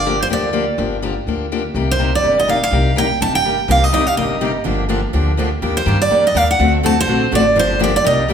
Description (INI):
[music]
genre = acoustic string swing (jazz manouche)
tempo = 248 BPM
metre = 4/4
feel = swing 56% on 8ths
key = G minor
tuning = A4 = 441 Hz
[part]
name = picked steel-string acoustic guitar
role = melody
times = 0.0-8.3 s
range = C5 to A5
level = -16 LUFS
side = right 2 dB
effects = none
[part]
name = upright bass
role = bass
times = 0.0-8.3 s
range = G1 to G2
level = -20 LUFS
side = equal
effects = none
[part]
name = picked steel-string acoustic guitar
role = accompaniment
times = 0.1-8.3 s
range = C3 to A4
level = -20 LUFS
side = left 6 dB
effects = none
[part]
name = picked steel-string acoustic guitar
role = accompaniment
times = 3.7-8.3 s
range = C3 to A4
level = -23 LUFS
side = right 5 dB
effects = none
[sound]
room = moderate recital hall reverb, RT60 1.4 s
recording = recorded in a church or concert hall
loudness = -14 LUFS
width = side -8 dB against mid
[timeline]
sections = 0.0-8.3 A section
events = none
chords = 0.0 Gm7; 1.8 Cm7; 4.7 Gm7; 5.6 Ebmaj7; 6.6 D7; 7.6 Gm7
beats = 0.06 0.30 0.54 | 0.79 1.03 1.27 1.51 | 1.75 2.00 2.24 2.48 | 2.72 2.96 3.20 3.44 | 3.69 3.93 4.17 4.41 | 4.65 4.89 5.14 5.38 | 5.62 5.86 6.11 6.35 | 6.59 6.83 7.08 7.32 | 7.56 7.80 8.04 8.29